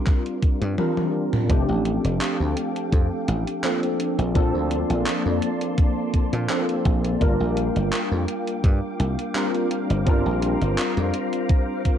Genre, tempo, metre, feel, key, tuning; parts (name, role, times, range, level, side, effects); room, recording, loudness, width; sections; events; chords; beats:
vaporwave; 84 BPM; 4/4; swing 54% on 16ths; F major; A4 = 440 Hz
bright tine electric piano; accompaniment; 0.0-12.0 s; F3 to Bb4; -24 LUFS; equal; slow stereo tremolo, ensemble chorus, tape echo
soft string machine; sustained chords; 0.0-12.0 s; Bb3 to D6; -32 LUFS; left 1 dB; phaser, ensemble chorus, vintage 12-bit sampler grit
electronic kick drum; drums; 0.1-12.0 s; -19 LUFS; equal
gated 80s digital drum machine; drums; 0.1-12.0 s; handclaps, hi-hat, toms; -29 LUFS; equal; gated reverb
dry thumbed slap bass; bass; 0.6-11.1 s; F1 to Bb2; -24 LUFS; equal
little or no reverb; dark, warm production, cassette tape; -20 LUFS; side -9 dB against mid
0.0-1.5 A section; 1.5-12.0 B section
drum fill 0.8-1.5
0.0 C9sus4/G; 1.5 F69; 4.0 Bbmaj9; 7.2 C9sus4/G
0.07 0.78 | 1.50 2.21 2.93 3.64 | 4.35 5.07 5.78 6.50 | 7.21 7.93 8.64 9.35 | 10.07 10.78 11.50